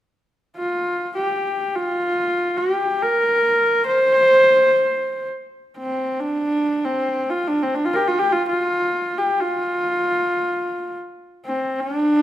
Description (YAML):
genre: mongolian traditional, Mongolian folk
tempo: free time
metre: none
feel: none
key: F zhi mode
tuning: A4 = 443 Hz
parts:
  - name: warm horsehead fiddle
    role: solo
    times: 0.6-12.2 s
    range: C4 to C5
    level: -18 LUFS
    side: equal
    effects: none
room: moderate recital hall reverb, RT60 1.4 s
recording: none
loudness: -18 LUFS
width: side -12 dB against mid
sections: 0.1-12.2 A section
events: none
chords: none